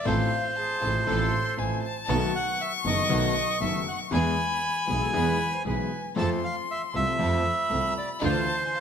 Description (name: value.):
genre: tango.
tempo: 118 BPM.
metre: 4/4.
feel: rubato.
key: unclear.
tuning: A4 = 440 Hz.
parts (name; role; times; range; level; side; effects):
bandoneon; melody; 0.0-8.8 s; C5 to A5; -28 LUFS; right 2 dB; none.
warm violin; second line; 0.0-8.8 s; F5 to C#6; -32 LUFS; left 6 dB; none.
clear concert grand piano; accompaniment; 0.1-8.4 s; F#1 to A4; -30 LUFS; left 2 dB; none.
rich studio string section; stabs; 0.1-8.4 s; B3 to A4; -36 LUFS; right 3 dB; none.
clear double bass; bass; 0.1-8.4 s; F#1 to F2; -31 LUFS; right 3 dB; none.
silver concert flute; second line; 0.6-8.8 s; G#4 to F5; -39 LUFS; right 4 dB; none.
room: moderate concert hall reverb, RT60 1.9 s.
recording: close, detailed microphones.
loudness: -24 LUFS.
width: side -7 dB against mid.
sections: 0.0-8.8 A section.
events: none.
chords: 0.1 F/A; 2.1 B7; 4.1 E; 6.2 F; 8.2 Dmadd9.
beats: | 0.06 0.57 1.08 1.59 | 2.09 2.60 3.11 3.61 | 4.12 4.63 5.14 5.66 | 6.17 6.69 7.20 7.71 | 8.23 8.73.